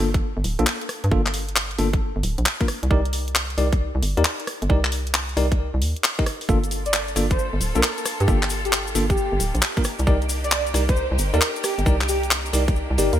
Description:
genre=UK garage, two-step garage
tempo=134 BPM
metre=4/4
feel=swing 66% on 16ths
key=unclear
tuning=A4 = 440 Hz
part: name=bell-like tine electric piano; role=stabs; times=0.0-13.1 s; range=Bb3 to Eb5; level=-27 LUFS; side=left 1 dB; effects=fast stereo tremolo, low-pass filter, ping-pong delay
part: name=hollow knocking FM bass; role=bass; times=0.0-13.2 s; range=D1 to G2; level=-23 LUFS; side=equal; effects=none
part: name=garage drum kit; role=drums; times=0.0-13.2 s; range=handclaps, hi-hat, rim click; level=-24 LUFS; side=left 1 dB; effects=none
part: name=electronic kick drum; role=drums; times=0.1-12.7 s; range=none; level=-21 LUFS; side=equal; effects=none
part: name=dark studio violin section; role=sustained chords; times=6.5-13.2 s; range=Bb3 to A4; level=-33 LUFS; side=equal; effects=sidechain pumping
part: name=cabasa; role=percussion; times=6.5-13.2 s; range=none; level=-33 LUFS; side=left 5 dB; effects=none
part: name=airy dreamy lead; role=melody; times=6.9-13.2 s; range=G4 to D5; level=-27 LUFS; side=equal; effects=chorus, cassette tape, ping-pong delay
room=light reverb, digital ambience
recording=bright 1980s-style digital production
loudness=-19 LUFS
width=side -11 dB against mid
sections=0.0-13.2 A section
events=filter sweep on tine electric piano 0.0-13.2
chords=0.0 Gm7; 2.7 Cm; 6.5 Gm7; 9.8 Cm7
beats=0.22 0.67 | 1.11 1.56 2.01 2.46 | 2.91 3.35 3.80 4.25 | 4.70 5.14 5.59 6.04 | 6.49 6.94 7.38 7.83 | 8.28 8.73 9.18 9.62 | 10.07 10.52 10.97 11.41 | 11.86 12.31 12.76

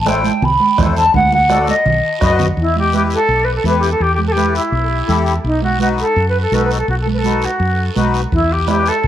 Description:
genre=latin, cumbia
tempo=167 BPM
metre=4/4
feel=straight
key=E harmonic minor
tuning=A4 = 440 Hz
part: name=wooden flute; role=melody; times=0.0-9.1 s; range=D#4 to B5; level=-16 LUFS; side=equal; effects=cassette tape, plate reverb, analog delay
part: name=fingered electric bass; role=bass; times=0.0-9.1 s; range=A1 to F#2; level=-18 LUFS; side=equal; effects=none
part: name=accordion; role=accompaniment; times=0.1-8.9 s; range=D#4 to D#5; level=-20 LUFS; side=left 6 dB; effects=light tremolo tuning, plate reverb
part: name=bombo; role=percussion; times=0.1-2.4, 8.3-9.1 s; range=none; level=-20 LUFS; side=right 2 dB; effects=none
part: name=congas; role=percussion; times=0.1-8.9 s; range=none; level=-22 LUFS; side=right 8 dB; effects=none
part: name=guiro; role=percussion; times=0.1-9.1 s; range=none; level=-32 LUFS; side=right 9 dB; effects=none
room=moderate small room reverb, RT60 0.5 s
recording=home recording on cassette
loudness=-12 LUFS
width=side -11 dB against mid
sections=0.0-2.6 A section; 2.6-9.1 B section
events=drum fill 1.1-2.6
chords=0.0 Am; 1.1 D; 1.9 B; 2.6 Em; 5.4 B7; 8.3 Em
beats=0.06 0.42 0.78 | 1.14 1.50 1.86 2.22 | 2.57 2.93 3.29 3.65 | 4.01 4.37 4.73 5.09 | 5.45 5.81 6.17 6.53 | 6.88 7.24 7.60 7.96 | 8.32 8.68 9.04

